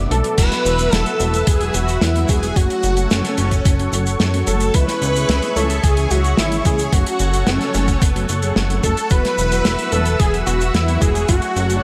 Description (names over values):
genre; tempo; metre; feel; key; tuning
synthwave; 110 BPM; 4/4; straight; F# minor; A4 = 441 Hz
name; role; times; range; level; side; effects
warm analog pad; sustained chords; 0.0-11.8 s; G#4 to E6; -28 LUFS; equal; chorus, sidechain pumping
mellow synth brass; stabs; 0.0-11.8 s; B2 to G#4; -30 LUFS; equal; chorus
chorused synth bass; bass; 0.0-11.8 s; E1 to F#2; -22 LUFS; equal; none
unison lead; melody; 0.1-11.8 s; C#4 to B4; -24 LUFS; equal; cassette tape, digital delay
warm soul drum kit; drums; 0.1-11.8 s; crash cymbal, hi-hat, shaker, snare drum; -25 LUFS; equal; gated reverb
string machine, violins; second line; 0.4-11.8 s; C#4 to B4; -31 LUFS; equal; ensemble chorus
electronic kick drum; drums; 0.4-11.4 s; none; -19 LUFS; equal; none
room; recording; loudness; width
little or no reverb; none; -17 LUFS; mono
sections
0.4-11.8 A section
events
break 0.0-0.4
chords
0.4 Esus2; 2.6 F#m; 4.7 C#m; 6.9 F#m; 9.1 Esus2; 11.3 F#m